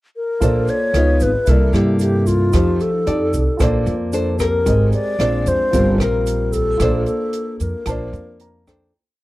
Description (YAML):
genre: bossa nova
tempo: 113 BPM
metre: 4/4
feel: straight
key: Bb major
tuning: A4 = 440 Hz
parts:
  - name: alto flute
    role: melody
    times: 0.2-8.6 s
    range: F4 to D5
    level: -21 LUFS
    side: left 1 dB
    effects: none
  - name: dark baby grand piano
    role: accompaniment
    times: 0.4-9.0 s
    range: Eb4 to Bb5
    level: -26 LUFS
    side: right 4 dB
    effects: none
  - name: nylon-string guitar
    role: accompaniment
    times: 0.4-8.9 s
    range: C3 to D5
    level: -22 LUFS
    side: left 2 dB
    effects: none
  - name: upright bass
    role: bass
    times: 0.4-8.9 s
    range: G1 to G2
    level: -18 LUFS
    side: equal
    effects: none
  - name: open jazz drum kit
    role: drums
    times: 0.4-8.8 s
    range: hi-hat, kick drum, rim click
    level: -24 LUFS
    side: right 1 dB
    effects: none
  - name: tube shaker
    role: percussion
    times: 0.4-8.9 s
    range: none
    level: -40 LUFS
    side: right 7 dB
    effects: none
room: small room ambience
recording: dry, close 1970s-style studio recording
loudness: -15 LUFS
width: side -18 dB against mid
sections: 0.0-0.4 pickup bar; 0.4-8.9 A section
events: fade-out 6.8-8.9; grand piano fill 8.1-8.9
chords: 0.4 Bbmaj9; 0.9 Db9; 1.5 C13; 2.5 F9; 3.1 F13; 3.6 Bbmaj9; 4.7 Abmaj9; 5.2 Bb9; 5.7 Gm11; 6.8 Bbmaj9